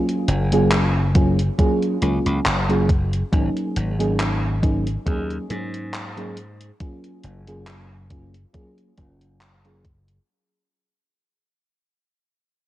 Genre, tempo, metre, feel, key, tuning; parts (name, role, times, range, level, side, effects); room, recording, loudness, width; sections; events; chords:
vaporwave; 69 BPM; 4/4; swing 55% on 16ths; Gb major; A4 = 443 Hz
mellow FM electric piano; accompaniment; 0.0-9.9 s; Gb3 to Ab4; -23 LUFS; right 1 dB; analog chorus, analog delay
gated 80s digital drum machine; drums; 0.1-10.2 s; handclaps, hi-hat; -26 LUFS; equal; gated reverb
glassy slap bass; bass; 0.3-10.2 s; Gb1 to Ab2; -22 LUFS; equal; tube saturation, low-pass filter
electronic kick drum; drums; 1.2-10.0 s; -20 LUFS; equal
digital ambience; cassette tape; -18 LUFS; side -14 dB against mid
0.0-10.3 A section
fade-out 0.0-10.3; filter sweep on slap bass 0.0-10.3
0.0 Gbmaj9; 3.3 Ab9sus4; 6.8 Gbmaj9